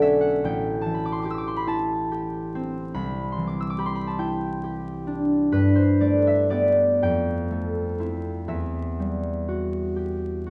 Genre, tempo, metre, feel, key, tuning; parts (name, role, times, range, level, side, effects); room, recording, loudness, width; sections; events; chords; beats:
classical, solo harp piece; 39-49 BPM (dotted quarters); 6/8; rubato; A4 = 439 Hz
concert harp; solo; 0.0-10.5 s; A1 to E6; -24 LUFS; equal
moderate recital hall reverb, RT60 1.3 s; dark, warm production, vinyl crackle, nothing above 10.5 kHz; -25 LUFS; mono
0.0-10.5 A section
0.4 Am9; 2.9 Cmaj9; 5.5 Gadd9; 7.0 Fmaj7; 8.5 Emadd9
| 0.41 1.68 | 2.95 4.20 | 5.53 7.03 | 8.51 9.97